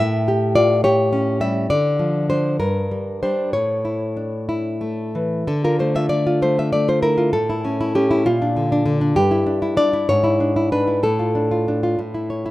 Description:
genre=romantic piece for solo classical guitar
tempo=64 BPM (dotted quarters)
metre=6/8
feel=uneven beats, rubato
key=D minor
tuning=A4 = 440 Hz
part: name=nylon-string guitar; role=solo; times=0.0-12.5 s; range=G2 to E5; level=-17 LUFS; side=equal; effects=none
room=light reverb, studio ambience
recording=rough home demo mix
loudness=-17 LUFS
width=side -17 dB against mid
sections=0.0-5.5 A section; 5.5-12.5 B section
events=none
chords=0.0 A7; 1.7 Dm; 2.6 Gm; 3.5 A; 5.5 Dm; 7.3 A; 8.3 Bb; 9.2 Em7/G; 10.1 E7/G#; 11.0 Dm/A; 12.0 A

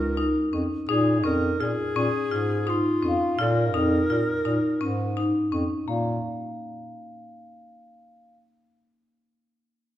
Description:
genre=contemporary instrumental, chamber music in an uneven meter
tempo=168 BPM (eighths)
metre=7/8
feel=straight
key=Bb minor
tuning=A4 = 439 Hz
part: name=breathy clarinet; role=melody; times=0.0-5.1 s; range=F4 to Bb4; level=-28 LUFS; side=equal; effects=none
part: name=marimba with medium hard mallets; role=arpeggios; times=0.0-6.2 s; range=Bb3 to F4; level=-25 LUFS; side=left 1 dB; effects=none
part: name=mellow bass clarinet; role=bass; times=0.0-6.2 s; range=Db2 to Bb2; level=-28 LUFS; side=equal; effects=none
part: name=large celesta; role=texture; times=3.1-8.3 s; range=F5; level=-33 LUFS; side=left 1 dB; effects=none
room=moderate recital hall reverb, RT60 1.7 s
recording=minimal, uncompressed stereo recording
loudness=-22 LUFS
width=side -12 dB against mid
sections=0.0-5.9 A section; 5.9-8.4 B section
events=none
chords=0.0 Eb5; 0.9 Bbm7; 5.9 Bb5

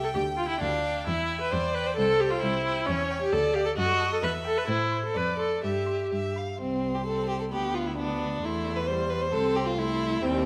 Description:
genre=quick classical-period movement for string quartet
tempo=132 BPM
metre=2/4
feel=rubato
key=C major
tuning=A4 = 441 Hz
part: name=rich violin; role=melody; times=0.0-10.5 s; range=E5 to C6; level=-43 LUFS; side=equal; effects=none
part: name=rich violin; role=second line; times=0.0-10.5 s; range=C4 to G5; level=-33 LUFS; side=equal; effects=none
part: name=rich viola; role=accompaniment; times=0.0-10.5 s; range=G3 to C5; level=-30 LUFS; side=equal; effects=none
part: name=rich cello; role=bass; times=0.0-10.5 s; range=C2 to A2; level=-35 LUFS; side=equal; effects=none
room=moderate scoring stage reverb, RT60 1.7 s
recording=none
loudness=-28 LUFS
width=mono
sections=0.0-6.6 A section; 6.6-10.5 A section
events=none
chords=0.1 G5/D; 1.1 Em7; 2.0 C; 2.9 Em6; 3.3 Dm; 3.8 F#m6; 4.2 Em; 4.7 Am; 5.2 Dm7/F; 5.6 C/G; 6.6 Am7/C; 7.5 D5; 8.4 C/E; 9.3 C

